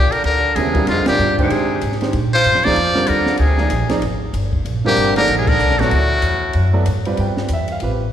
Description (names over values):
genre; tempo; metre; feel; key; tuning
modal jazz; 190 BPM; 4/4; swing 61% on 8ths; Bb mixolydian; A4 = 439 Hz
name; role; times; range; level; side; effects
trumpet with metal mute; melody; 0.0-6.9 s; F4 to D5; -18 LUFS; equal; none
clear tenor saxophone; second line; 0.0-6.9 s; Ab2 to F3; -23 LUFS; left 3 dB; none
upright bass; bass; 0.0-8.1 s; G1 to C3; -19 LUFS; equal; none
compact cocktail drum kit; drums; 0.1-7.9 s; crash cymbal, hi-hat, kick drum, ride cymbal, snare drum; -25 LUFS; equal; none
clear concert grand piano; accompaniment; 0.6-8.0 s; Db3 to G5; -22 LUFS; right 3 dB; none
room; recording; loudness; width
wet concert hall reverb, RT60 2.4 s; recorded in a church or concert hall; -14 LUFS; side -10 dB against mid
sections
0.0-7.2 A section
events
band accent 1.0, 5.4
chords
0.0 Bb13; 5.9 Dadd9; 7.2 G13